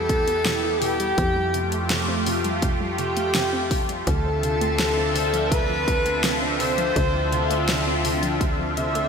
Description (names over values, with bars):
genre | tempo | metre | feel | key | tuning
synthwave | 83 BPM | 4/4 | straight | D dorian | A4 = 436 Hz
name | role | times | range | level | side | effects
clear alto saxophone | melody | 0.0-9.1 s | G4 to E5 | -27 LUFS | left 1 dB | tape echo, shimmer reverb, slapback echo
airy dreamy lead | second line | 0.0-9.1 s | G4 to E5 | -30 LUFS | equal | chorus, ping-pong delay, shimmer reverb, slapback echo
lush unison pad | sustained chords | 0.0-9.1 s | A3 to E5 | -26 LUFS | equal | chorus, phaser, sidechain pumping, shimmer reverb
warbly dusty pluck | arpeggios | 0.0-9.1 s | B2 to E4 | -33 LUFS | right 2 dB | chorus, ping-pong delay, shimmer reverb
tight sequencer bass | bass | 0.0-9.1 s | D2 to F2 | -28 LUFS | equal | none
electronic kick drum | drums | 0.1-8.6 s | none | -25 LUFS | equal | small room ambience
pop drum kit | drums | 0.1-9.1 s | hi-hat, snare drum | -27 LUFS | left 1 dB | small room ambience
room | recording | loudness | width
moderate lush hall reverb, RT60 2.7 s | big arena sound | -20 LUFS | side -6 dB against mid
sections
0.0-9.1 A section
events
none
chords
0.0 Em; 1.2 Fadd9; 4.1 Dm7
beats
0.46 | 1.18 1.90 2.62 3.35 | 4.07 4.79 5.52 6.24 | 6.96 7.68 8.41